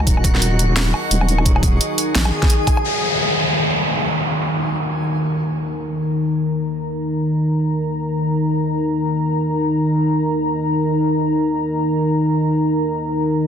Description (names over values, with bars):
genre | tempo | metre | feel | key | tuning
half-time drum and bass | free time | none | none | Eb minor | A4 = 440 Hz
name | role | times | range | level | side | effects
dark analog pad | sustained chords | 0.0-13.5 s | Eb3 to Db6 | -19 LUFS | equal | chorus, sidechain pumping
deep soft wobble bass | bass | 0.0-2.3 s | Eb1 to Bb1 | -18 LUFS | equal | chorus
drum and bass drum kit | drums | 0.0-2.8 s | hi-hat, snare drum, woodblock | -21 LUFS | equal | overdrive
backwards swelling texture | texture | 0.0-2.9 s | Gb3 to Ab4 | -25 LUFS | left 1 dB | built-in reverb
electronic kick drum | drums | 0.1-2.8 s | none | -16 LUFS | equal | overdrive
downlifter | sound effects | 2.8-5.6 s | none | -21 LUFS | equal | none
room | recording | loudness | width
moderate lush hall reverb, RT60 2.2 s | dense, heavily limited modern master | -16 LUFS | side -8 dB against mid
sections
0.0-2.8 A section; 2.8-13.5 B section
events
drop 0.0-2.8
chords
0.0 Eb5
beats
free time